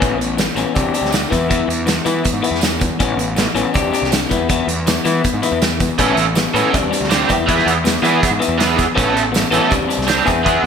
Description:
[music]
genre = indie rock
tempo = 161 BPM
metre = 4/4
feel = straight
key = unclear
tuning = A4 = 439 Hz
[part]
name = electric guitar through a small old amp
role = riff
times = 0.0-10.7 s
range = E3 to G#4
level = -18 LUFS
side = left 6 dB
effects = spring reverb
[part]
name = fuzz picked electric bass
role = bass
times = 0.0-10.7 s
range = A1 to E3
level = -22 LUFS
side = right 1 dB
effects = overdrive
[part]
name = loose indie drum kit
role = drums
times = 0.0-10.5 s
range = hi-hat, kick drum, snare drum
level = -19 LUFS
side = right 1 dB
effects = gated reverb
[part]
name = tambourine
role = percussion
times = 0.0-10.5 s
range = none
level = -32 LUFS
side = right 10 dB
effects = none
[part]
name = overdriven electric guitar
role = riff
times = 6.0-10.7 s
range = E3 to A4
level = -17 LUFS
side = right 6 dB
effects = ensemble chorus, ping-pong delay
[sound]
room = moderate lush hall reverb, RT60 2.0 s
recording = bright 1980s-style digital production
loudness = -14 LUFS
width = side -7 dB against mid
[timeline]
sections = 0.0-10.7 A section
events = none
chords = 0.0 Aadd9; 0.8 Csus2; 1.3 E5; 3.0 Aadd9; 3.7 Csus2; 4.3 E5; 6.0 Aadd9; 6.7 Csus2; 7.3 E; 9.0 Aadd9; 9.7 Csus2

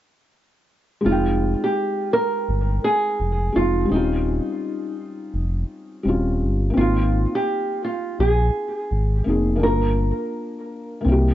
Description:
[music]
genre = lo-fi hip hop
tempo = 84 BPM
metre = 4/4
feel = swing 61% on 16ths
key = F minor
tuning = A4 = 440 Hz
[part]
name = felt-muted upright piano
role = accompaniment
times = 1.0-11.3 s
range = G3 to G5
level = -24 LUFS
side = left 2 dB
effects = cassette tape, low-pass filter
[part]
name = nylon-string guitar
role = melody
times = 1.1-11.3 s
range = Eb4 to Bb4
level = -23 LUFS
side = right 2 dB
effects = low-pass filter, tape echo
[part]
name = sub bass with octave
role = bass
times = 1.1-11.3 s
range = Eb1 to C2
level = -21 LUFS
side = equal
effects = transformer saturation
[sound]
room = moderate small room reverb, RT60 0.5 s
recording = worn, warbling old tape, cassette tape, warbly pitch drift, nothing above 7.8 kHz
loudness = -19 LUFS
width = side -13 dB against mid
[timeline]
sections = 1.0-11.3 A section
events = none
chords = 1.0 Fm9; 3.9 Eb13; 6.8 Ab69; 9.6 Gm7

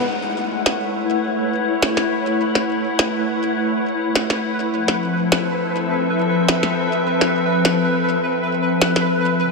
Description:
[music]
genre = IDM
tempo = 103 BPM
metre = 4/4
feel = straight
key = unclear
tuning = A4 = 440 Hz
[part]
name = glassy FM pad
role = sustained chords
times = 0.0-9.5 s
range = C#3 to F#5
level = -19 LUFS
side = left 2 dB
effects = ensemble chorus, built-in reverb
[part]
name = pulsing gated texture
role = texture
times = 0.5-9.5 s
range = B4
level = -24 LUFS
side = right 1 dB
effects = chorus, built-in reverb
[part]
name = electronic snare drum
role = drums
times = 0.7-9.1 s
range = none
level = -22 LUFS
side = equal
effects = digital delay
[sound]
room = moderate huge ambient reverb, RT60 4.8 s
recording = none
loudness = -17 LUFS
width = side -2 dB against mid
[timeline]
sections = 0.1-9.5 A section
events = none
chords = 0.1 A6; 4.7 Fmaj7

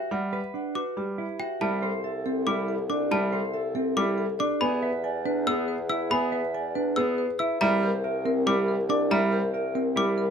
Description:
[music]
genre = classical, minimalist pattern music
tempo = 280 BPM (eighths)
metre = 7/8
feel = straight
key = C major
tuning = A4 = 442 Hz
[part]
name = marimba with medium mallets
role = melody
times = 0.0-10.3 s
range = G4 to G#5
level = -29 LUFS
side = left 4 dB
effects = none
[part]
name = mellow electric guitar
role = arpeggios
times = 0.0-10.2 s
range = C4 to E5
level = -30 LUFS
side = right 4 dB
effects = none
[part]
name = trough xylophone with wooden mallets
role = arpeggios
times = 0.0-10.2 s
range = G5 to E6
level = -30 LUFS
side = left 4 dB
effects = none
[part]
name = bright grand piano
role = accompaniment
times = 0.1-10.2 s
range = G3 to B3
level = -28 LUFS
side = right 2 dB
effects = none
[part]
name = mellow bassoon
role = bass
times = 1.6-10.3 s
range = C2 to E2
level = -33 LUFS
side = right 2 dB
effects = none
[sound]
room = little or no reverb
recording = close, detailed microphones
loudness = -24 LUFS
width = side -7 dB against mid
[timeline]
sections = 0.0-1.6 A section; 1.6-10.3 B section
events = none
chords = 0.0 Em7; 1.6 C6; 4.6 E7; 7.6 C7

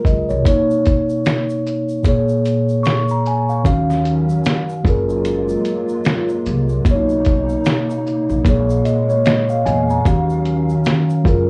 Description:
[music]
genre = lo-fi hip hop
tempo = 75 BPM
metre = 4/4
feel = swing 59% on 16ths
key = unclear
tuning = A4 = 444 Hz
[part]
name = mellow tine electric piano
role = accompaniment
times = 0.0-11.5 s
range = A#2 to C#6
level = -19 LUFS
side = equal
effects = low-pass filter
[part]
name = hollow soft pad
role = sustained chords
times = 0.0-11.5 s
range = B2 to E#5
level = -28 LUFS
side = equal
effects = ensemble chorus, low-pass filter
[part]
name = lo-fi sampler-style drum kit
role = drums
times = 0.0-11.5 s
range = hi-hat, kick drum, shaker, snare drum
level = -20 LUFS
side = equal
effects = vintage 12-bit sampler grit
[part]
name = upright bass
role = bass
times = 0.1-11.5 s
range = F#1 to E2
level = -25 LUFS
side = equal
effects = none
[part]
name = egg shaker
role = percussion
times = 0.3-11.2 s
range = none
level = -50 LUFS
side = equal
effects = none
[sound]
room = moderate studio ambience, RT60 0.5 s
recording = worn, warbling old tape, cassette tape, warbly pitch drift, studio reverb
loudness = -17 LUFS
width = mono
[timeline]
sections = 0.0-11.5 A section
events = none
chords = 0.5 Bmaj9; 2.0 A#m7; 3.6 D#m9; 4.8 F#maj9; 6.8 Bmaj9; 8.4 A#m7; 10.1 D#m9

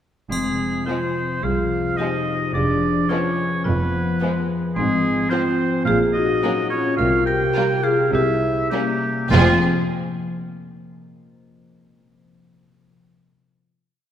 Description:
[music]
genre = cinematic, playful, whimsical film cue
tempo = 106 BPM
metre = 4/4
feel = straight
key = F minor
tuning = A4 = 437 Hz
[part]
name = marimba with hard mallets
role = melody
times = 0.3-9.6 s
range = Bb3 to F5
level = -24 LUFS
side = left 1 dB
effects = none
[part]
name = clear oboe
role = second line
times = 0.3-9.6 s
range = F4 to G5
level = -24 LUFS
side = right 2 dB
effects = none
[part]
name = mellow French horn section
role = sustained chords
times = 0.3-9.6 s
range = G3 to G4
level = -26 LUFS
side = left 1 dB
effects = none
[part]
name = concert harp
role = arpeggios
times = 0.3-9.6 s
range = F2 to C5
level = -26 LUFS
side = left 4 dB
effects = none
[part]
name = clear studio cello section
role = bass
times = 0.3-9.6 s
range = C2 to C3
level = -26 LUFS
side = right 2 dB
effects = none
[part]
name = warm studio double bass section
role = bass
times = 0.3-9.6 s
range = F1 to C2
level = -25 LUFS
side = right 3 dB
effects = none
[part]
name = triangle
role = percussion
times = 0.3-1.4 s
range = none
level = -37 LUFS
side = equal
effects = none
[part]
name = rich studio violin section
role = melody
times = 0.9-9.6 s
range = Cb4 to Ab4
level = -31 LUFS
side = left 1 dB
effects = none
[part]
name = rich studio violin section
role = second line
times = 0.9-9.6 s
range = Ab3 to C4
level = -31 LUFS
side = equal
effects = none
[part]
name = rich studio viola section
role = accompaniment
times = 0.9-9.6 s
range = F3 to G3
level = -31 LUFS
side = right 2 dB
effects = none
[sound]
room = wet scoring stage reverb, RT60 2.1 s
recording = none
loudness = -18 LUFS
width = side -9 dB against mid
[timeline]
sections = 0.3-9.3 A section; 9.3-11.7 final chord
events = none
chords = 0.3 Fm; 2.5 Fdim7; 4.8 Fm/Ab; 5.9 Gb/Bb; 7.0 C7sus4; 8.1 C7b9; 9.3 Fm

